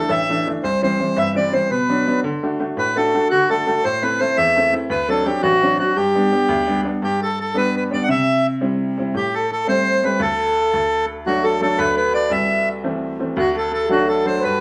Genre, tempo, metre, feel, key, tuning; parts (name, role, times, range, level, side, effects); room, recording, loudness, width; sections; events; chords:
celtic folk; 113 BPM (dotted quarters); 6/8; straight; A4 = 444 Hz
accordion; melody; 0.0-14.6 s; F#4 to F#5; -21 LUFS; equal
baroque flute; second line; 0.0-14.6 s; F#4 to E5; -27 LUFS; equal
bright upright piano; accompaniment; 0.0-14.6 s; G1 to F#4; -24 LUFS; equal
cimbalom; second line; 11.3-14.6 s; F#4 to E5; -26 LUFS; equal
light reverb; studio ambience; -19 LUFS; mono
0.0-7.0 A section; 7.0-14.6 B section
0.0 Dsus2; 0.6 C; 1.7 Bm; 2.2 D; 3.8 Am; 4.9 D7; 6.0 G; 8.1 C; 9.1 Am7; 10.2 N.C.; 10.7 D; 12.3 C6; 13.4 D